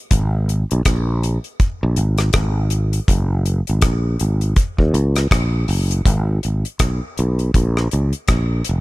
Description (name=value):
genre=lovers rock reggae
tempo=81 BPM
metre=4/4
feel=swing 59% on 16ths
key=unclear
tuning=A4 = 440 Hz
part: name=sustaining fretless electric bass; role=bass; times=0.1-8.8 s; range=E#1 to D#2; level=-17 LUFS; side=equal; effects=none
part: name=deep reggae drum kit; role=drums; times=0.1-8.8 s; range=hi-hat, kick drum, rim click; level=-19 LUFS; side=equal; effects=none
room=little or no reverb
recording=none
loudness=-16 LUFS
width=side -19 dB against mid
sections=0.0-6.1 A section; 6.1-8.8 B section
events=none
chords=none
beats=| 0.12 0.86 1.60 2.34 | 3.08 3.83 4.57 5.31 | 6.05 6.80 7.54 8.29